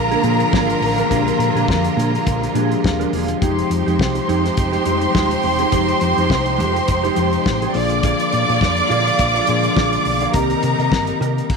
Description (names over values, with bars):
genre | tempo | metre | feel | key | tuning
disco | 104 BPM | 4/4 | swing 56% on 16ths | F dorian | A4 = 440 Hz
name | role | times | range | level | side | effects
warm symphonic violin section | second line | 0.0-11.5 s | Bb4 to D6 | -20 LUFS | left 1 dB | slapback echo
mellow tine electric piano | accompaniment | 0.0-11.5 s | D3 to Ab4 | -23 LUFS | left 12 dB | none
clear symphonic string section | sustained chords | 0.0-11.5 s | C3 to G4 | -23 LUFS | right 12 dB | none
hollow-body short-scale fingered electric bass | bass | 0.0-11.4 s | Eb1 to C3 | -23 LUFS | equal | none
mellow electric guitar | accompaniment | 0.1-11.4 s | Ab3 to F5 | -26 LUFS | right 13 dB | lush chorus
damped 70s drum kit | drums | 0.1-11.6 s | crash cymbal, hi-hat, kick drum, snare drum | -22 LUFS | left 2 dB | none
room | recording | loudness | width
moderate echo chamber reverb, RT60 1.3 s, small room ambience | 1960s-style stereo with parts hard left and right | -15 LUFS | side -4 dB against mid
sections
0.0-11.6 A section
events
none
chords
0.0 Bb7; 3.4 Fm9; 7.7 Bb7; 10.3 Cm7